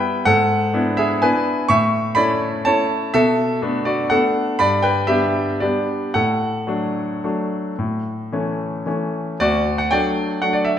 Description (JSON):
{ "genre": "classical, piano waltz", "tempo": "104-132 BPM", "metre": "3/4", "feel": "rubato", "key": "D major", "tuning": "A4 = 442 Hz", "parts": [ { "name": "clear concert grand piano", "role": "solo", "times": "0.0-10.8 s", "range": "D2 to C#6", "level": "-17 LUFS", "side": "equal", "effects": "none" } ], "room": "wet recital hall reverb, RT60 1.5 s", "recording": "none", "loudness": "-17 LUFS", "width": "side -9 dB against mid", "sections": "0.0-9.4 A section; 9.4-10.8 B section", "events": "none", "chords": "0.3 E7/G#; 1.7 A; 3.2 Bm7; 4.6 G; 6.1 D/A; 7.8 A; 9.4 D" }